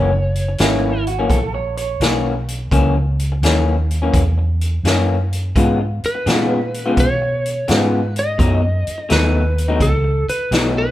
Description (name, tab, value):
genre	electric blues shuffle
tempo	85 BPM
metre	4/4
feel	swing 67% on 8ths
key	F# mixolydian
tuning	A4 = 440 Hz
part	electric slide guitar	melody	0.0-1.0, 6.1-10.9 s	A4 to D#5	-22 LUFS	equal	none
part	electric guitar through a small old amp	riff	0.0-10.8 s	F#2 to E#4	-20 LUFS	left 2 dB	none
part	vintage muted fingered electric bass	bass	0.0-10.9 s	F#1 to B2	-19 LUFS	equal	none
part	vintage drum kit	drums	0.4-10.8 s	hi-hat, kick drum, snare drum	-21 LUFS	equal	none
part	electric guitar through a small old amp	second line	0.6-2.2 s	E4 to C#5	-23 LUFS	right 6 dB	spring reverb
room	light reverb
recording	band playing live in one room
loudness	-15 LUFS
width	side -14 dB against mid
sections	0.0-10.9 A section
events	none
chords	0.0 F#7; 5.6 C#7; 8.4 B7